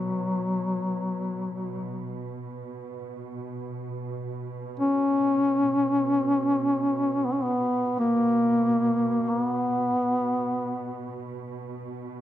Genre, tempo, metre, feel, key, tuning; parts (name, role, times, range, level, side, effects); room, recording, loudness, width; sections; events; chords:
caucasian folk, Caucasian lament; free time; A4 = 441 Hz
dark duduk; melody; 0.0-11.3 s; F#3 to C#4; -23 LUFS; left 1 dB; slapback echo
muted studio string section; drone; 0.0-12.2 s; B2; -35 LUFS; right 3 dB
moderate recital hall reverb, RT60 1.3 s; -23 LUFS; side -12 dB against mid
0.0-12.2 A section